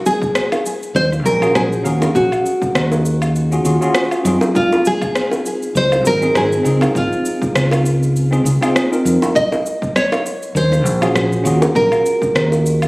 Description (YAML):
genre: sunset chillout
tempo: 100 BPM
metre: 4/4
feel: swing 56% on 16ths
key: Eb dorian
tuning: A4 = 439 Hz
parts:
  - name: nylon-string guitar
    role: melody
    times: 0.1-12.9 s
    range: F4 to Eb5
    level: -17 LUFS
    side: equal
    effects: digital delay
  - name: electronic shaker, rim click and woodblock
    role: drums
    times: 0.1-12.9 s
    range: none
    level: -22 LUFS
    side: equal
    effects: overdrive, studio reverb
  - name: electronic kick drum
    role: drums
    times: 0.2-12.3 s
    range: none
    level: -25 LUFS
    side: equal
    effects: overdrive, studio reverb
  - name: bongos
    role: percussion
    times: 0.5-12.6 s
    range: none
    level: -21 LUFS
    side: equal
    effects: none
  - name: fingered electric bass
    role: bass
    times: 0.9-12.9 s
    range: Ab1 to Gb2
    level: -17 LUFS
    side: equal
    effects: tube saturation
  - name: tine electric piano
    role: accompaniment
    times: 1.4-12.9 s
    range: C4 to F5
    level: -20 LUFS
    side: equal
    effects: medium stereo tremolo, auto-pan, low-pass filter, ping-pong delay
room: light reverb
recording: recorded on a phone in the room, studio reverb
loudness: -13 LUFS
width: side -23 dB against mid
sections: 0.0-12.9 A section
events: none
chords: 0.0 Ebm11; 4.6 Dbmaj7; 9.4 Ebm11